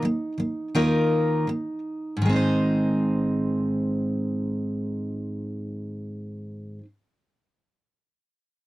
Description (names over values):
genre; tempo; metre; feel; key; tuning
pop; 78-85 BPM; 4/4; swing 55% on 16ths; Ab major; A4 = 441 Hz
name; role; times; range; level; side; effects
picked steel-string acoustic guitar; accompaniment; 0.0-6.9 s; Ab2 to C5; -24 LUFS; equal; none
room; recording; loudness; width
moderate booth ambience, RT60 0.2 s; dry, close 1970s-style studio recording; -23 LUFS; side -17 dB against mid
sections
0.0-2.2 A section; 2.2-5.3 B section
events
slowing down 0.0-2.2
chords
0.0 Ebsus2; 2.2 Ab